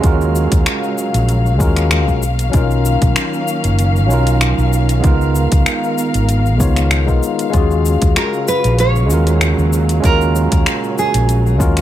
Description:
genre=sunset chillout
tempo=96 BPM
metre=4/4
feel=swing 54% on 16ths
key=Eb minor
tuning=A4 = 441 Hz
part: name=bright tine electric piano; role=accompaniment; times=0.0-11.8 s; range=F#3 to Db5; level=-19 LUFS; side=moving between left 8 dB and right 7 dB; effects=auto-pan, ping-pong delay
part: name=dark symphonic string section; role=sustained chords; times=0.0-11.8 s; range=Bb2 to F5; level=-23 LUFS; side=left 1 dB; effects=none
part: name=mellow fretless electric bass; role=bass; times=0.0-11.8 s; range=F#1 to Eb2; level=-15 LUFS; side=equal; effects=none
part: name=deep house drum kit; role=drums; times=0.0-11.8 s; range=finger snaps, hi-hat, shaker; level=-21 LUFS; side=left 1 dB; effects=overdrive
part: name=electronic kick drum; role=drums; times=0.0-11.7 s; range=none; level=-15 LUFS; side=equal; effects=overdrive
part: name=nylon-string guitar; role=melody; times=8.2-11.8 s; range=Ab4 to Db5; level=-19 LUFS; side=right 2 dB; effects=ping-pong delay
room=light reverb, digital ambience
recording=none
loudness=-12 LUFS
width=side -12 dB against mid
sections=0.0-11.8 A section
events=none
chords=0.0 Ebm11; 2.2 Bmaj9#11; 5.0 Db13; 7.5 Ebm11

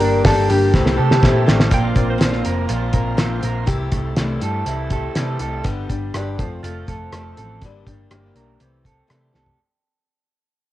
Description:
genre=folk rock and heartland rock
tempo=122 BPM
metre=4/4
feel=straight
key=unclear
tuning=A4 = 440 Hz
part: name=electric slide guitar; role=melody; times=0.0-1.4 s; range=G4 to Bb4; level=-20 LUFS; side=equal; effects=cassette tape
part: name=picked steel-string acoustic guitar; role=accompaniment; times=0.0-9.6 s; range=F2 to A4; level=-25 LUFS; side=left 7 dB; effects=cassette tape
part: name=bright tonewheel organ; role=sustained chords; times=0.0-5.6 s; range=C4 to Bb4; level=-34 LUFS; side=equal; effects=slow rotary speaker, overdrive, chorus vibrato, cassette tape
part: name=electric guitar through a small old amp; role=riff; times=0.0-9.6 s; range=G2 to Bb4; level=-26 LUFS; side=right 7 dB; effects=lush chorus, cassette tape
part: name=hollow-body short-scale picked electric bass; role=bass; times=0.0-9.5 s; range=F1 to C3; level=-22 LUFS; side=equal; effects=none
part: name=cloth-damped thuddy drum kit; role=drums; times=0.0-9.6 s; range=hi-hat, kick drum, rim click, snare drum, toms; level=-19 LUFS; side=equal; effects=cassette tape
part: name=pedal steel guitar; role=second line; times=1.7-2.5 s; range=C5 to G5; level=-27 LUFS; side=right 5 dB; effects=cassette tape
room=light reverb, small room ambience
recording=home recording on cassette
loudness=-16 LUFS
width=side -14 dB against mid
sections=0.0-1.7 A section; 1.7-9.6 B section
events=drum fill 0.7-1.7, 9.3; fade-out 1.7-9.6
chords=0.0 Gm; 0.7 C6; 1.7 Bbsus2; 3.7 C6; 5.6 G; 6.4 F; 7.6 Gm; 8.6 C6

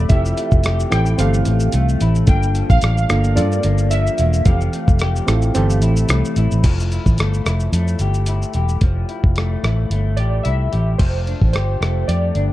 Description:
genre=indie pop, bedroom pop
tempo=110 BPM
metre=4/4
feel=swing 55% on 16ths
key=F major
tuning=A4 = 439 Hz
part: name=warbly lo-fi synth keys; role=melody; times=0.0-6.0, 10.2-12.5 s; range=C5 to G5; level=-25 LUFS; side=right 1 dB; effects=lush chorus, analog delay
part: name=electric guitar through a small old amp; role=accompaniment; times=0.0-12.5 s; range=G2 to G4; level=-26 LUFS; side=left 6 dB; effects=analog chorus, warbly pitch drift
part: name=reed electric piano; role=accompaniment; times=0.0-6.7 s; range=E3 to A4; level=-24 LUFS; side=right 4 dB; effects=none
part: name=vintage muted fingered electric bass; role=bass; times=0.0-12.5 s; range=E1 to G2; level=-17 LUFS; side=equal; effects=none
part: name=dusty soul sampler-style drum kit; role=drums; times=0.1-12.5 s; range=crash cymbal, hi-hat, kick drum, rim click, shaker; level=-18 LUFS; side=equal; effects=none
room=little or no reverb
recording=dark, warm production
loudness=-15 LUFS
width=side -15 dB against mid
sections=0.0-6.6 A section; 6.6-11.0 B section; 11.0-12.5 C section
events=none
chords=0.0 Fmaj9; 2.3 Gm7; 4.5 Fmaj9; 11.0 F69

